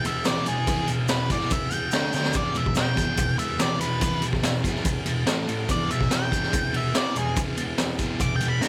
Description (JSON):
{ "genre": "garage rock duo or trio", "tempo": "144 BPM", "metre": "4/4", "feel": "straight", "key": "E mixolydian", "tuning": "A4 = 440 Hz", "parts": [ { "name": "octave-fuzz lead guitar", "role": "melody", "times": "0.0-8.7 s", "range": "G#4 to D6", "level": "-30 LUFS", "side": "equal", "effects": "distortion" }, { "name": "combo organ", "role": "sustained chords", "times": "0.0-8.7 s", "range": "A3 to A4", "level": "-38 LUFS", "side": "equal", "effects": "none" }, { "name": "thick fuzz guitar", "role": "riff", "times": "0.0-8.7 s", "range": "E2 to D4", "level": "-30 LUFS", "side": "equal", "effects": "distortion" }, { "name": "raw garage drum kit", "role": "drums", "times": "0.0-8.7 s", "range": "kick drum, ride cymbal, snare drum", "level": "-28 LUFS", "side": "equal", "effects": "none" }, { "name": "tube shaker", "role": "percussion", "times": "0.0-8.7 s", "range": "none", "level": "-40 LUFS", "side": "equal", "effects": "none" } ], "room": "light reverb", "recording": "none", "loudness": "-25 LUFS", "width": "mono", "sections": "0.0-8.7 A section", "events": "drum fill 2.1", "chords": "0.0 E; 1.9 D5; 2.3 E; 5.3 A5; 5.7 E", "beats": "0.26 | 0.67 1.09 1.51 1.93 | 2.35 2.77 3.18 3.60 | 4.02 4.44 4.86 5.27 | 5.69 6.11 6.53 6.94 | 7.36 7.78 8.20 8.61" }